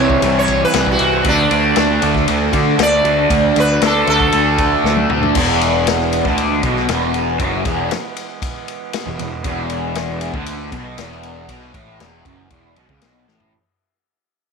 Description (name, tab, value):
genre	psychedelic rock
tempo	117 BPM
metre	4/4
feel	straight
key	E mixolydian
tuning	A4 = 440 Hz
part	sitar	melody	0.0-5.3 s	D4 to D5	-17 LUFS	right 1 dB	tape echo
part	hand-pumped harmonium	sustained chords	0.0-13.5 s	E3 to C6	-27 LUFS	right 11 dB	none
part	fuzz guitar	riff	0.0-13.5 s	E2 to D4	-18 LUFS	equal	distortion, phaser
part	fuzz picked electric bass	bass	0.0-13.5 s	E1 to D3	-21 LUFS	equal	overdrive
part	vintage drum kit	drums	0.1-13.5 s	crash cymbal, kick drum, ride cymbal, snare drum, toms	-22 LUFS	left 4 dB	none
room	moderate spring reverb, RT60 2.4 s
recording	1960s-style stereo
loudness	-13 LUFS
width	side -5 dB against mid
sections	0.0-5.3 A section; 5.3-13.5 B section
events	sitar solo 0.0-5.3; drum fill 4.8-5.3, 13.3; fade-out 5.3-13.5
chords	0.0 C; 1.3 D; 5.3 E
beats	0.23 0.75 | 1.26 1.77 2.28 2.79 | 3.31 3.82 4.33 4.84 | 5.35 5.86 6.37 6.88 | 7.39 7.91 8.42 8.93 | 9.44 9.95 10.46 10.97 | 11.49 12.00 12.51 13.02